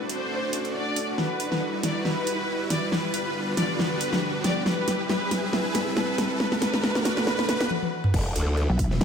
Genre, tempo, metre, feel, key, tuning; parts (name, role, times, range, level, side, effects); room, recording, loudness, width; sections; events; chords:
heavy wobble dubstep; 138 BPM; 4/4; swing 55% on 16ths, half-time; E minor; A4 = 440 Hz
supersaw pad; sustained chords; 0.0-9.0 s; D3 to E5; -33 LUFS; right 2 dB; sidechain pumping
riser; sound effects; 0.0-7.7 s; -34 LUFS; right 1 dB
warbly tape-like pad; texture; 0.0-9.0 s; G3 to B5; -34 LUFS; equal; chorus, built-in reverb, sidechain pumping
rich studio violin section; melody; 0.1-7.7 s; B4 to D5; -30 LUFS; left 1 dB; vintage 12-bit sampler grit, ping-pong delay
dubstep drum kit; drums; 0.1-9.0 s; crash cymbal, hi-hat, ride cymbal, snare drum, toms; -26 LUFS; equal; overdrive
growl bass; bass; 8.1-9.0 s; E1 to D2; -24 LUFS; equal; distortion, chorus, overdrive
electronic kick drum; drums; 8.1-8.9 s; -27 LUFS; equal
pulsing pluck wobble bass; bass; 8.7-9.0 s; E1 to B1; -24 LUFS; equal; chorus, overdrive
light reverb; -23 LUFS; side -7 dB against mid
0.0-8.1 A section
build-up 0.0-8.1; riser 0.0-7.7; drum fill 1.2-7.7, 7.7-8.1
0.0 D; 1.2 Emadd9; 2.9 G/D; 4.7 C; 6.4 D; 8.1 E5